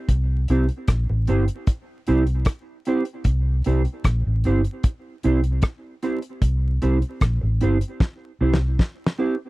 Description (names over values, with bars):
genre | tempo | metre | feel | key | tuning
roots reggae | 76 BPM | 4/4 | straight | C mixolydian | A4 = 436 Hz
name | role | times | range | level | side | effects
vintage muted fingered electric bass | bass | 0.1-8.8 s | G1 to C2 | -20 LUFS | equal | none
damped 70s drum kit | drums | 0.1-9.2 s | hi-hat, kick drum, rim click, snare drum | -19 LUFS | equal | none
mellow electric guitar | accompaniment | 0.5-9.3 s | C4 to C5 | -24 LUFS | right 3 dB | analog chorus, tape echo
room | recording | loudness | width
little or no reverb | dry, close 1970s-style studio recording, vinyl crackle | -20 LUFS | side -19 dB against mid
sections
0.0-9.5 A section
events
drum fill 8.0-9.5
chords
0.0 C